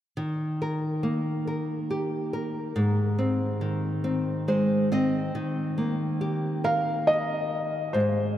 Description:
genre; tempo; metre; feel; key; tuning
children's music, lullaby; 46 BPM (dotted quarters); 6/8; straight; Eb major; A4 = 439 Hz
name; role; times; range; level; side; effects
nylon-string guitar; accompaniment; 0.2-8.4 s; Ab2 to Eb5; -26 LUFS; equal; none
felt-muted upright piano; melody; 6.6-8.4 s; C5 to F5; -24 LUFS; equal; none
room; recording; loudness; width
wet cathedral reverb, RT60 6.6 s; in a vast, echoing space; -24 LUFS; side -11 dB against mid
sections
0.2-5.3 A section; 5.3-8.4 B section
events
nylon-string guitar fill 4.0-5.3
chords
0.2 Eb; 2.8 Ab; 5.3 Eb

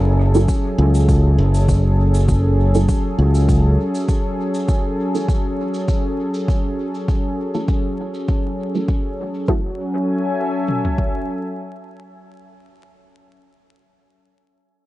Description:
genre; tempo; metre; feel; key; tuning
ambient dub; 100 BPM; 4/4; swing 54% on 16ths; F# minor; A4 = 444 Hz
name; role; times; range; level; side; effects
warm analog pad; sustained chords; 0.0-12.6 s; F#3 to G#5; -22 LUFS; left 1 dB; wide subtle chorus
modern bright fingered electric bass; bass; 0.0-3.8 s; F#1 to C#2; -14 LUFS; equal; none
filtered dub chord stab; stabs; 0.3-13.1 s; E4 to A4; -23 LUFS; right 2 dB; phaser, analog chorus, dub echo
cabasa; drums; 0.3-9.5 s; none; -41 LUFS; right 1 dB; low-pass filter on snare, low-pass filter on perc, low-pass filter on room, dub echo
deep house drum kit; drums; 0.5-11.1 s; kick drum, toms; -20 LUFS; equal; overdrive
room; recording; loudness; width
little or no reverb; dark, warm production, vinyl crackle, nothing above 10.3 kHz; -16 LUFS; side -17 dB against mid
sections
0.0-9.5 A section; 9.5-11.9 B section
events
none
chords
0.0 F#m7

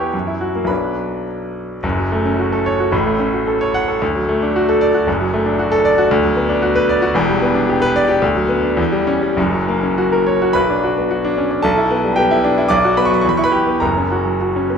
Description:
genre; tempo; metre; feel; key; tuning
classical, virtuoso piano study; 98-118 BPM; 2/4; rubato; F# minor, B minor from 6.1 s; A4 = 440 Hz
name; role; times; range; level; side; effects
bright grand piano; solo; 0.0-14.8 s; E1 to D6; -14 LUFS; equal; none
room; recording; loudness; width
wet recital hall reverb, RT60 1.4 s; minimal, uncompressed stereo recording; -14 LUFS; side -6 dB against mid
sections
0.0-1.8 A section; 1.8-10.6 B section; 10.6-14.8 A section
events
none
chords
0.1 F#7; 0.7 Bm; 1.8 F#m; 2.9 F#m/A; 4.0 D; 5.1 D/F#; 6.1 Bm/D; 7.1 Em7; 8.2 Bm/D; 8.8 C#dim/E; 9.4 F#; 10.6 Bm; 11.6 Em/B; 12.7 Bm; 13.3 Em; 13.8 F#

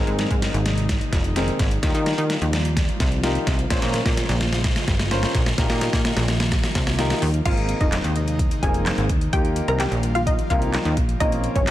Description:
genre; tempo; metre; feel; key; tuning
dance-pop; 128 BPM; 4/4; straight; Ab major; A4 = 439 Hz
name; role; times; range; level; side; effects
clear concert grand piano; accompaniment; 0.0-11.7 s; Bb3 to C5; -27 LUFS; left 1 dB; sidechain pumping, low-pass filter
airy breathy pad; sustained chords; 0.0-11.7 s; C3 to C5; -31 LUFS; equal; chorus, sidechain pumping, low-pass filter
plucky analog bass; bass; 0.0-11.7 s; F1 to Eb3; -23 LUFS; equal; sidechain pumping
deep house drum kit; drums; 0.1-11.7 s; crash cymbal, handclaps, hi-hat, kick drum, snare drum; -22 LUFS; equal; none
wide unison pluck; melody; 7.5-11.7 s; Db4 to Bb5; -26 LUFS; equal; sidechain pumping, digital delay
room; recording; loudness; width
digital ambience; none; -19 LUFS; side -14 dB against mid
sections
0.0-7.5 A section; 7.5-11.7 B section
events
build-up 0.0-7.5; drum fill 0.0-7.5; drop 7.5-11.7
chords
0.0 Abadd9; 1.8 Ebadd9; 3.7 Bbmadd9; 5.6 Ebadd9/Bb; 7.5 Abadd9; 9.3 Ebadd9; 11.2 Bbmadd9

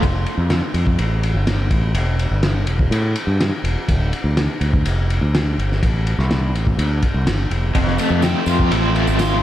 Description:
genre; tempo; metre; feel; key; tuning
psychedelic rock; 124 BPM; 4/4; straight; unclear; A4 = 439 Hz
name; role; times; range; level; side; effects
overdriven electric guitar; riff; 0.0, 7.8-9.4 s; F2 to F4; -22 LUFS; equal; tremolo
growling fingered electric bass; bass; 0.0-9.4 s; D1 to A2; -18 LUFS; equal; overdrive
cloth-damped thuddy drum kit; drums; 0.0-9.3 s; kick drum, ride cymbal, snare drum; -21 LUFS; equal; none
tambourine; percussion; 8.0-9.3 s; none; -42 LUFS; right 11 dB; none
room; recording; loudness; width
light reverb, studio ambience; none; -16 LUFS; side -13 dB against mid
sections
0.0-9.4 A section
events
none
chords
0.0 F; 1.7 A5; 3.9 Dm; 7.8 F

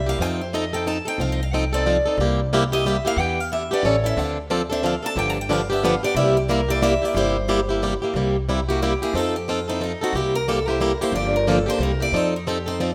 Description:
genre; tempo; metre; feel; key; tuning
acoustic string swing (jazz manouche); 181 BPM; 3/4; swing 60% on 8ths; C mixolydian; A4 = 440 Hz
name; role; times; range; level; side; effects
picked steel-string acoustic guitar; melody; 0.0-12.9 s; Eb4 to A5; -27 LUFS; equal; none
upright bass; bass; 0.0-12.9 s; G1 to F2; -29 LUFS; equal; none
picked plugged-in swing-style acoustic guitar; accompaniment; 0.1-12.9 s; C3 to A4; -24 LUFS; equal; none
room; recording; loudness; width
light reverb, studio ambience; rough home demo mix; -22 LUFS; mono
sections
0.0-8.1 A section; 8.1-12.9 A section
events
steel-string acoustic guitar solo 0.0-8.1, 8.1-12.9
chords
0.2 F7; 2.2 C7; 3.2 Em7; 3.8 A7; 4.2 Dm7; 5.2 G7; 6.2 C7; 9.1 F7; 10.1 C7; 11.1 Gm7; 11.8 C7; 12.1 F7

